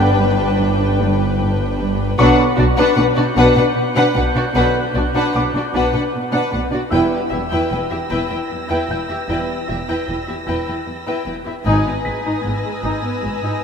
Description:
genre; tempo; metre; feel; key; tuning
cinematic, suspense film score; 76 BPM; 3/4; straight; unclear; A4 = 440 Hz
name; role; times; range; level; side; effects
muted symphonic violin section; melody; 0.0-13.6 s; D5 to G#5; -25 LUFS; left 2 dB; none
muted symphonic violin section; second line; 0.0-13.6 s; F#4 to B4; -22 LUFS; left 3 dB; none
muted symphonic viola section; accompaniment; 0.0-13.6 s; G#3 to E4; -22 LUFS; equal; none
mellow French horn section; sustained chords; 0.0-9.6 s; B3 to B4; -28 LUFS; equal; none
warm trombone section; sustained chords; 0.0-9.6 s; D3 to G3; -30 LUFS; equal; none
muted symphonic cello section; riff; 0.0-13.5 s; E2 to B3; -25 LUFS; right 2 dB; none
muted symphonic cello section; bass; 0.0-13.5 s; E2 to B2; -24 LUFS; equal; none
muted symphonic double bass section; bass; 0.0-13.3 s; E1 to B1; -23 LUFS; equal; none
bright baby grand piano; texture; 0.0-13.6 s; E5 to B6; -31 LUFS; right 1 dB; none
muted studio violin section; texture; 2.2-13.6 s; D#6 to C#7; -31 LUFS; right 1 dB; none
room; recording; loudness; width
wet cathedral reverb, RT60 5.0 s; in a vast, echoing space; -15 LUFS; side -6 dB against mid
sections
0.0-11.7 A section; 11.7-13.6 B section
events
band accent 11.7-12.4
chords
0.0 G; 2.2 Bm; 6.9 Em; 11.7 G#m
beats
0.60 1.39 | 2.18 2.97 3.76 | 4.55 5.34 6.13 | 6.92 7.71 8.50 | 9.29 10.08 10.87 | 11.66 12.45 13.23

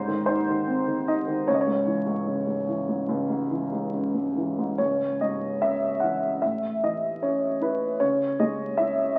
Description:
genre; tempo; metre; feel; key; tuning
classical, lyrical solo piano; 69-78 BPM; 4/4; rubato; C# minor; A4 = 440 Hz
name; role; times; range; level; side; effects
dark upright piano; solo; 0.0-9.2 s; C#2 to F#5; -26 LUFS; equal; none
room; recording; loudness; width
wet recital hall reverb, RT60 1.6 s; very old 78 rpm record, vinyl crackle; -26 LUFS; mono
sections
0.0-4.8 A section; 4.8-9.2 B section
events
none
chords
0.0 G#; 1.5 C#m; 6.4 A; 8.0 C#m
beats
0.67 | 1.48 2.28 3.09 3.94 | 4.79 5.61 6.43 7.23 | 8.01 8.78

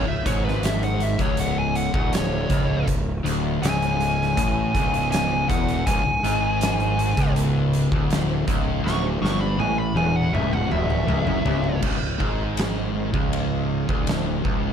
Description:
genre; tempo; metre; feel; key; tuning
stoner and doom metal; 80 BPM; 4/4; straight; C# minor; A4 = 440 Hz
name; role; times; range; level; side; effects
fuzz lead guitar; melody; 0.0-11.8 s; B4 to C#6; -26 LUFS; equal; distortion, tape echo
crunchy overdriven guitar; riff; 0.0-14.7 s; C#2 to A2; -27 LUFS; equal; none
thick fuzz guitar; riff; 0.0-14.7 s; C#2 to A2; -26 LUFS; left 1 dB; distortion
fuzz fingered electric bass; bass; 0.0-14.7 s; C#1 to A1; -27 LUFS; equal; overdrive
oversized low-tuned drum kit; drums; 0.3-14.6 s; crash cymbal, hi-hat, kick drum, ride cymbal, snare drum, toms; -26 LUFS; equal; none
room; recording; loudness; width
light reverb; none; -20 LUFS; side -8 dB against mid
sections
0.0-11.8 A section; 11.8-14.7 B section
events
lead electric guitar solo 0.0-11.8; drum fill 8.8-11.8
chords
0.0 C#m; 11.8 C#5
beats
0.64 1.38 2.13 | 2.88 3.62 4.37 5.12 | 5.86 6.61 7.35 8.10 | 8.85 9.59 10.34 11.08 | 11.83 12.58 13.33 14.07

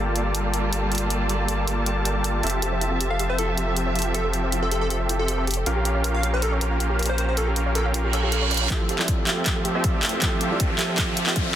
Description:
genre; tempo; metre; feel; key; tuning
future bass; 158 BPM; 4/4; half-time; F major; A4 = 440 Hz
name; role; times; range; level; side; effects
felt-muted upright piano; accompaniment; 0.0-2.5, 8.7-11.6 s; F3 to E5; -31 LUFS; right 3 dB; sidechain pumping, tape echo
warm studio string section; sustained chords; 0.0-11.5 s; F2 to A5; -32 LUFS; equal; sidechain pumping
supersaw chords; riff; 0.0-11.5 s; Bb3 to F5; -27 LUFS; right 1 dB; sidechain pumping, low-pass filter, tape echo
saturated sub bass; bass; 0.0-8.7 s; F1 to Bb1; -26 LUFS; equal; sidechain pumping
big-room dance drum kit; drums; 0.2-11.4 s; handclaps, hi-hat; -26 LUFS; equal; none
soft round pluck; arpeggios; 2.6-11.5 s; E4 to F5; -35 LUFS; right 3 dB; chorus, sidechain pumping, tape echo
plucky unison lead; melody; 3.1-8.4 s; A4 to F5; -30 LUFS; left 1 dB; sidechain pumping, digital delay
reverse cymbal and riser; sound effects; 8.1-11.6 s; none; -30 LUFS; right 4 dB; none
electronic kick drum; drums; 8.7-11.4 s; none; -25 LUFS; equal; none
room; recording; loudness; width
light reverb; dense, heavily limited modern master; -21 LUFS; side -11 dB against mid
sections
0.0-8.7 A section; 8.7-11.6 B section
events
reverse cymbal 8.1-8.7; build-up 8.7-11.6; drum fill 8.7-11.6; riser 8.7-11.6; filter sweep on supersaw synth 8.7-11.6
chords
0.0 Gm9; 2.4 Fmaj9; 5.7 Bbm6; 8.7 Fmaj9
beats
0.35 0.73 | 1.11 1.49 1.87 2.25 | 2.63 3.01 3.39 3.77 | 4.15 4.53 4.91 5.29 | 5.67 6.04 6.42 6.80 | 7.18 7.56 7.94 8.32 | 8.70 9.08 9.46 9.84 | 10.22 10.60 10.98 11.36

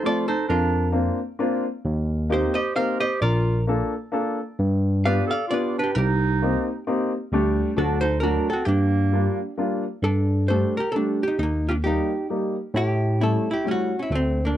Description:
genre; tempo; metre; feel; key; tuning
musette waltz; 132 BPM; 3/4; straight; G minor; A4 = 436 Hz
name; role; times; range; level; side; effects
hollow-body jazz guitar; melody; 0.0-14.6 s; A3 to F5; -25 LUFS; right 1 dB; none
breathy clarinet; second line; 0.0-9.6 s; Bb3 to B4; -27 LUFS; right 5 dB; none
warm upright piano; accompaniment; 0.0-13.9 s; F3 to A4; -25 LUFS; left 2 dB; none
barky tine electric piano; bass; 0.5-14.6 s; Bb1 to A2; -22 LUFS; equal; overdrive
room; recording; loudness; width
light reverb; dark, warm production; -21 LUFS; side -12 dB against mid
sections
0.0-10.0 A section; 10.0-14.6 B section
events
none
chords
0.5 Bbadd9/F; 1.8 Eb6; 3.2 Bbmaj7; 4.6 G7; 6.0 Cm7; 7.3 Dsus4; 7.8 D; 8.7 Gm7; 10.0 Gsus2; 11.4 Eb; 12.8 A7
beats
0.03 | 0.49 0.94 1.39 | 1.85 2.30 2.76 | 3.21 3.67 4.12 | 4.58 5.04 5.50 | 5.95 6.41 6.86 | 7.31 7.76 8.22 | 8.67 9.12 9.58 | 10.04 10.50 10.95 | 11.40 11.85 12.30 | 12.76 13.21 13.66 | 14.11 14.56

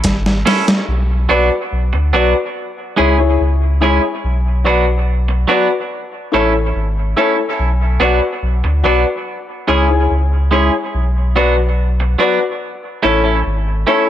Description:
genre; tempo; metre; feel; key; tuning
dub reggae; 72 BPM; 4/4; straight; B dorian; A4 = 439 Hz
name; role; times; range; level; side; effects
warm sub bass; bass; 0.0-13.9 s; G#1 to D2; -15 LUFS; equal; none
dusty soul sampler-style drum kit; drums; 0.0-0.9 s; hi-hat, kick drum, snare drum; -16 LUFS; equal; overdrive
clean electric guitar; accompaniment; 0.5-14.1 s; F#3 to A4; -18 LUFS; right 4 dB; dub echo
warm upright piano; stabs; 1.3-14.1 s; E4 to D5; -18 LUFS; left 5 dB; dub echo
room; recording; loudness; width
moderate spring reverb, RT60 2.4 s; none; -13 LUFS; side -11 dB against mid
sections
0.9-14.1 A section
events
break 0.0-0.9; drum fill 0.0-0.9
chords
0.0 A; 0.9 Bm; 2.6 C#m; 4.2 Bm; 5.9 A; 7.6 Bm; 9.3 C#m; 10.9 Bm; 12.6 A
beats
0.05 | 0.89 1.72 2.56 3.40 | 4.24 5.08 5.91 6.75 | 7.59 8.43 9.27 10.10 | 10.94 11.78 12.62 13.45

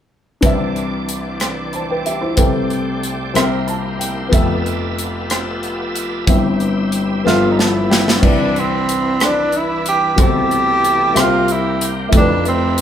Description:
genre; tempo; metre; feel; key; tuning
slow gospel; 62 BPM (dotted quarters); 6/8; straight; C major; A4 = 440 Hz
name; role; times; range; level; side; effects
warm grand piano; accompaniment; 0.4-12.8 s; F1 to A5; -18 LUFS; left 2 dB; none
bright tonewheel organ; sustained chords; 0.4-12.8 s; C3 to E5; -25 LUFS; right 2 dB; overdrive, chorus vibrato, slow rotary speaker
crisp fusion drum kit; drums; 0.4-12.8 s; crash cymbal, hi-hat, kick drum, rim click, snare drum; -17 LUFS; equal; none
breathy tenor saxophone; melody; 7.3-12.8 s; C4 to G4; -17 LUFS; right 1 dB; none
room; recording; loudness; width
wet studio reverb, RT60 0.8 s; band playing live in one room; -14 LUFS; side -9 dB against mid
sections
0.4-8.2 A section; 8.2-12.8 B section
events
grand piano fill 3.4-4.3, 7.3-8.2; drum fill 7.3-8.2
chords
0.4 Cmaj9; 3.4 C7; 4.3 Fmaj9#11; 6.3 C/G; 7.3 G13; 8.2 Cmaj9; 10.2 Am9/C; 11.2 C7; 12.1 Fmaj9#11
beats
| 0.43 1.40 | 2.38 3.35 | 4.33 5.30 | 6.28 7.26 | 8.23 9.21 | 10.18 11.16 | 12.13

